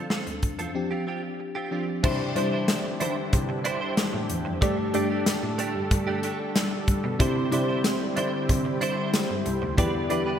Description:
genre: 1980s-style pop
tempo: 93 BPM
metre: 4/4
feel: straight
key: C major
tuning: A4 = 439 Hz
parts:
  - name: mellow FM electric piano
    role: accompaniment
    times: 0.0-10.4 s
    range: F3 to D5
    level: -29 LUFS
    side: left 1 dB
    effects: chorus, phaser
  - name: direct-recorded clean electric guitar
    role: riff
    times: 0.0-10.4 s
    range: A3 to C5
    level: -32 LUFS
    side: right 4 dB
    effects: ensemble chorus, digital delay
  - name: rich cello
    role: bass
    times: 0.0-10.3 s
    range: C2 to G3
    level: -32 LUFS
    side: equal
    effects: none
  - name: modern studio drum kit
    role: drums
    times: 0.1-10.3 s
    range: crash cymbal, hi-hat, kick drum, snare drum, tambourine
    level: -27 LUFS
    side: equal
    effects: gated reverb
  - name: soft string machine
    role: sustained chords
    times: 2.0-10.4 s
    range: D3 to A4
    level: -34 LUFS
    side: equal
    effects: phaser, ensemble chorus
  - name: analog synth brass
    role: stabs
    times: 2.0-10.4 s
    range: E3 to D5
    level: -34 LUFS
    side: left 1 dB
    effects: chorus
room: wet lush hall reverb, RT60 2.0 s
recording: bright 1980s-style digital production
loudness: -24 LUFS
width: side -9 dB against mid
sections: 0.0-2.0 A section; 2.0-10.4 B section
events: none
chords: 0.0 Dm7; 0.7 G7sus4; 2.0 Cadd9; 4.6 Gsus2; 7.2 Cadd9; 9.8 Em7

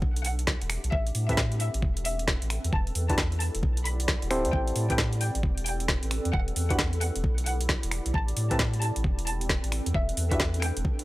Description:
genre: UK garage, two-step garage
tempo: 133 BPM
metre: 4/4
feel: swing 64% on 16ths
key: A minor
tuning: A4 = 441 Hz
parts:
  - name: bright studio violin section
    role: melody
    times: 0.0-10.9 s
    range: E5 to B5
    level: -35 LUFS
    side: left 1 dB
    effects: tape echo
  - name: soft dub sub bass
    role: bass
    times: 0.0-10.8 s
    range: D1 to A2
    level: -29 LUFS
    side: equal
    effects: none
  - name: electronic kick drum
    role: drums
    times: 0.0-11.0 s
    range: none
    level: -28 LUFS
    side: equal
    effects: overdrive
  - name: granular cloud pad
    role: texture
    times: 0.0-11.0 s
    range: C4 to G5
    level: -38 LUFS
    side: right 1 dB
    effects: built-in reverb, sidechain pumping
  - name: garage drum kit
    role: drums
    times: 0.2-11.0 s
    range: finger snaps, hi-hat, snare drum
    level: -31 LUFS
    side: equal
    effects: overdrive
  - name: percussive organ stab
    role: stabs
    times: 1.3-10.4 s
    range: C4 to C5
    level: -32 LUFS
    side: equal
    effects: chorus, cassette tape, tape echo
room: digital ambience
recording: dry, gritty hardware recording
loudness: -25 LUFS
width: side -18 dB against mid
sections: 0.0-11.0 A section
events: none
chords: 0.0 Em9; 0.9 Am9; 2.7 Em9; 4.5 Am9; 6.3 Em9; 8.1 Am9; 9.9 Em9

